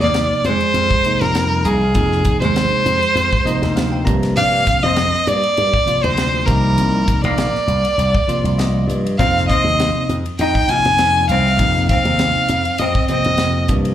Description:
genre	electric jazz fusion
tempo	100 BPM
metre	4/4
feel	swing 53% on 16ths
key	F dorian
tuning	A4 = 440 Hz
part	rich violin	melody	0.0-13.7 s	Ab4 to Ab5	-17 LUFS	equal	slapback echo
part	hollow-body jazz guitar	second line	0.0-13.7 s	F3 to F4	-24 LUFS	equal	slapback echo
part	bell-like tine electric piano	accompaniment	0.0-13.9 s	C3 to Bb5	-21 LUFS	equal	medium stereo tremolo, slapback echo
part	slap bass with an envelope filter	bass	0.0-13.9 s	Bb1 to G2	-20 LUFS	equal	none
part	crisp fusion drum kit	drums	0.0-13.9 s	hi-hat, kick drum, ride cymbal, snare drum	-22 LUFS	equal	none
room	small room ambience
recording	live gig heard through the venue's PA, club reverb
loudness	-14 LUFS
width	side -11 dB against mid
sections	0.0-13.9 A section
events	tine electric piano fill 3.2-4.4, 8.3-9.2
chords	0.0 Fm7; 4.1 Gm7; 6.5 Cm7; 9.2 F7(no3)

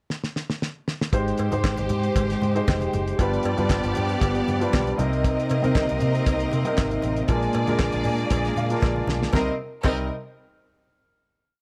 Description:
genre	disco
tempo	117 BPM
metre	4/4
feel	straight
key	C minor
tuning	A4 = 439 Hz
part	damped 70s drum kit	drums	0.1-10.0 s	crash cymbal, handclaps, hi-hat, kick drum, snare drum	-27 LUFS	equal	vintage 12-bit sampler grit
part	rich symphonic string section	second line	1.1-10.1 s	Ab3 to Eb5	-29 LUFS	equal	none
part	warm baby grand piano	accompaniment	1.1-10.1 s	Bb2 to F5	-29 LUFS	equal	none
part	mellow French horn section	sustained chords	1.1-9.6 s	Bb2 to G4	-35 LUFS	equal	none
part	fingered electric bass	bass	1.1-10.1 s	F1 to C3	-30 LUFS	equal	none
part	congas	percussion	1.1-10.1 s	none	-37 LUFS	equal	none
part	cowbell	percussion	1.1-10.1 s	none	-39 LUFS	equal	none
room	light reverb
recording	none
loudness	-24 LUFS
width	mono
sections	0.0-1.1 pickup bar; 1.1-9.3 pre-chorus; 9.3-11.4 final chord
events	drum fill 0.1-1.1, 8.8-9.3; grand piano fill 8.3-9.3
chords	0.0 N.C.; 1.1 Abmaj7; 3.2 G7; 5.0 Cm7; 7.3 Bb7; 9.3 Cm7

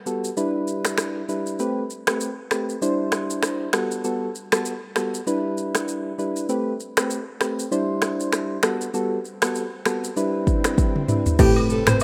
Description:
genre	afrobeats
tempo	98 BPM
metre	4/4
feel	swing 58% on 16ths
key	A dorian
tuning	A4 = 439 Hz
part	soft electric-piano-like synth keys	accompaniment	0.1-12.0 s	G3 to C5	-27 LUFS	equal	chorus
part	afro-pop drum kit	drums	0.1-12.0 s	crash cymbal, finger snaps, kick drum, rim click, shaker, toms	-25 LUFS	equal	none
part	swell and impact	sound effects	9.3-12.0 s	none	-37 LUFS	equal	none
part	breathy alto saxophone	melody	11.4-12.0 s	G4 to C5	-24 LUFS	equal	none
part	glassy FM pad	sustained chords	11.4-12.0 s	C3 to B4	-32 LUFS	equal	none
part	rich cello	bass	11.4-12.0 s	A2	-25 LUFS	equal	none
part	agogo bells and woodblock	percussion	11.6-12.0 s	none	-32 LUFS	equal	none
room	light reverb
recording	rough home demo mix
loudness	-23 LUFS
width	mono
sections	0.0-11.4 A section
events	swell 9.3-11.4; drum fill 10.8-11.4; impact 11.4-12.0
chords	0.4 Em7/G; 1.6 Am9; 2.8 D9sus4; 3.7 Gmaj9; 5.3 Em7/G; 6.5 Am9; 7.7 D9sus4; 8.6 Gmaj9; 10.2 Em7/G; 11.4 Am9

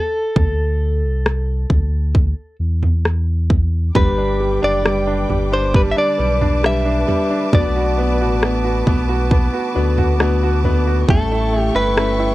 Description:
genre	pop ballad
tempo	67 BPM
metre	4/4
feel	straight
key	G major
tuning	A4 = 440 Hz
part	direct-recorded clean electric guitar	melody	0.0-12.3 s	A4 to E5	-21 LUFS	equal	none
part	sub bass with octave	bass	0.4-12.3 s	F#1 to E2	-19 LUFS	equal	none
part	pop drum kit	drums	0.4-12.2 s	kick drum, rim click, toms	-17 LUFS	equal	none
part	fingerpicked plugged-in steel-string acoustic guitar	arpeggios	3.9-12.3 s	G2 to B4	-24 LUFS	left 6 dB	none
part	bright grand piano	accompaniment	4.0-12.3 s	G3 to F#4	-22 LUFS	right 2 dB	none
part	rich studio string section	sustained chords	4.0-12.3 s	A4 to D6	-27 LUFS	right 1 dB	none
room	little or no reverb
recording	dry, close 1970s-style studio recording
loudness	-15 LUFS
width	side -17 dB against mid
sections	0.0-12.3 A section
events	none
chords	0.4 Dsus2; 4.0 G; 7.5 Bm7; 11.1 A7

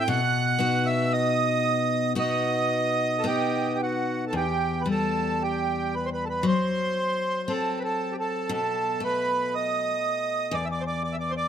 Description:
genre	celtic folk, Celtic slow air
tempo	54-61 BPM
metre	4/4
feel	rubato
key	E minor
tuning	A4 = 442 Hz
part	accordion	melody	0.0-11.5 s	F#4 to G5	-25 LUFS	right 3 dB	none
part	picked steel-string acoustic guitar	accompaniment	0.0-11.5 s	E2 to A4	-28 LUFS	left 4 dB	none
room	light reverb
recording	close, detailed microphones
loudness	-23 LUFS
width	side -8 dB against mid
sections	0.0-4.3 A section; 4.3-11.5 B section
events	none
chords	0.1 B; 4.3 Em; 6.4 F#dim; 8.5 B7; 10.5 E7(no3)

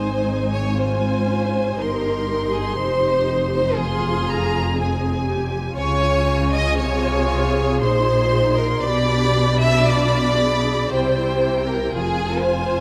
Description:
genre	classical, slow romantic movement for string orchestra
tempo	59 BPM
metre	3/4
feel	rubato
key	unclear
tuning	A4 = 442 Hz
part	clear chamber violin section	melody	0.0-12.8 s	G5 to C6	-30 LUFS	equal	none
part	rich chamber violin section	second line	0.0-12.8 s	Ab4 to E5	-24 LUFS	equal	none
part	warm studio viola section	accompaniment	0.0-12.8 s	C4 to Ab4	-29 LUFS	equal	none
part	rich chamber double bass section	bass	0.0-12.8 s	F1 to Db2	-27 LUFS	equal	none
part	warm chamber cello section	bass	0.0-12.8 s	F2 to Db3	-27 LUFS	equal	none
room	moderate concert hall reverb, RT60 2.5 s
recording	none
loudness	-20 LUFS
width	mono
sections	0.0-12.8 A section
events	none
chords	0.0 Ab; 2.8 Fm; 5.8 Db; 7.8 Bb9sus4; 8.8 Bdim7; 10.9 C; 12.0 Fm

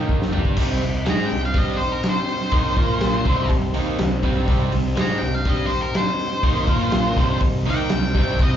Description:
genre	quiet-loud alternative rock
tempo	123 BPM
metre	4/4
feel	straight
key	C minor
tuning	A4 = 436 Hz
part	octave-fuzz lead guitar	melody	0.0-8.6 s	Bb4 to Bb5	-25 LUFS	equal	distortion, slapback echo, digital delay
part	electric guitar through a small old amp	arpeggios	0.0-8.4 s	Bb2 to Bb4	-30 LUFS	left 3 dB	wide subtle chorus, slapback echo
part	crunchy overdriven guitar	riff	0.0-8.6 s	C3 to Bb4	-26 LUFS	right 10 dB	slapback echo
part	overdriven electric guitar	riff	0.0-8.6 s	C3 to Bb4	-30 LUFS	left 10 dB	slapback echo
part	fuzz picked electric bass	bass	0.0-8.6 s	C2 to Bb2	-25 LUFS	equal	overdrive
part	raw garage drum kit	drums	0.1-8.5 s	crash cymbal, hi-hat, kick drum, snare drum, toms	-21 LUFS	equal	none
room	light reverb, small room reverb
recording	live gig heard through the venue's PA, club reverb, nothing above 7.5 kHz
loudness	-18 LUFS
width	side -10 dB against mid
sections	0.6-8.6 A section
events	drum fill 0.0-0.6; lead electric guitar solo 0.6-8.6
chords	0.3 C5; 0.6 Cm; 2.8 Bb5; 3.3 Cm; 6.7 Bb5; 7.2 Cm

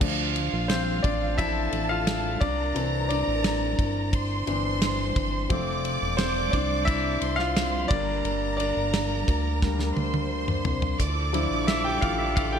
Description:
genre	piano-driven pop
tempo	87 BPM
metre	4/4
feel	straight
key	D minor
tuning	A4 = 439 Hz
part	warm studio violin section	second line	0.0-12.6 s	F4 to D6	-31 LUFS	right 2 dB	none
part	warm concert grand piano	accompaniment	0.0-12.6 s	E3 to G5	-28 LUFS	left 2 dB	none
part	chorused synth bass	bass	0.0-12.6 s	E1 to D2	-30 LUFS	equal	none
part	damped 70s drum kit	drums	0.0-12.5 s	crash cymbal, hi-hat, kick drum, ride cymbal, snare drum, toms	-29 LUFS	right 1 dB	gated reverb
part	warm studio string section	sustained chords	11.0-12.6 s	D3 to A4	-35 LUFS	right 4 dB	none
room	moderate plate reverb, RT60 3.2 s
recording	bright 1980s-style digital production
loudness	-23 LUFS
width	side -8 dB against mid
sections	0.0-12.6 A section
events	grand piano solo 0.0-12.6; drum fill 9.6-11.0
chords	0.0 Dmadd9; 2.4 Cadd9; 5.5 F; 7.9 Gm; 11.0 Dmadd9

